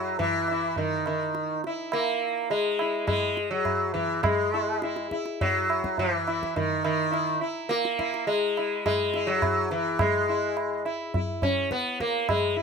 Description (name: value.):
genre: indian classical, Hindustani.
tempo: 104 BPM.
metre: 5/4.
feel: straight.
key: E raga yaman.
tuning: A4 = 440 Hz.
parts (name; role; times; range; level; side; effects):
sitar; melody; 0.0-12.6 s; D#3 to E4; -25 LUFS; equal; none.
tabla; percussion; 0.2-12.5 s; none; -31 LUFS; right 1 dB; none.
room: light reverb.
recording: close, detailed microphones.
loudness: -24 LUFS.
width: side -5 dB against mid.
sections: 0.0-4.2 A section; 4.2-12.6 B section.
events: none.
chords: none.